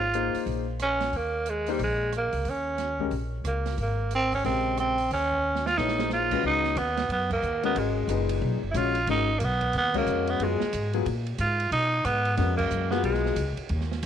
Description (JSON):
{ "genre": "modal jazz", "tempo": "181 BPM", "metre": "4/4", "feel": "swing 63% on 8ths", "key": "Eb mixolydian, Db mixolydian from 6.4 s", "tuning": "A4 = 439 Hz", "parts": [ { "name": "growling tenor saxophone", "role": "melody", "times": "0.0-13.5 s", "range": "G3 to F4", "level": "-26 LUFS", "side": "right 2 dB", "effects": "none" }, { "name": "upright bass", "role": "bass", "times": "0.0-14.1 s", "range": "Gb1 to Cb3", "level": "-30 LUFS", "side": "equal", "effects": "none" }, { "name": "warm concert grand piano", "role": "accompaniment", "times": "0.1-13.3 s", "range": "Bb2 to Db5", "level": "-30 LUFS", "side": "left 13 dB", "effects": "none" }, { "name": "open jazz drum kit", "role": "drums", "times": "0.1-14.1 s", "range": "crash cymbal, hi-hat, kick drum, ride cymbal, rim click, snare drum", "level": "-38 LUFS", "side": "right 8 dB", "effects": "none" } ], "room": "moderate plate reverb, RT60 2.1 s", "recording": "1960s-style stereo with parts hard left and right", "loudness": "-24 LUFS", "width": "side -9 dB against mid", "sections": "0.0-6.4 A section; 6.4-14.1 B section", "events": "drum fill 5.4-6.1; band accent 7.3, 9.9, 12.5", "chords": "0.0 Eb7sus4; 6.4 Db9sus4; 11.7 Abm7" }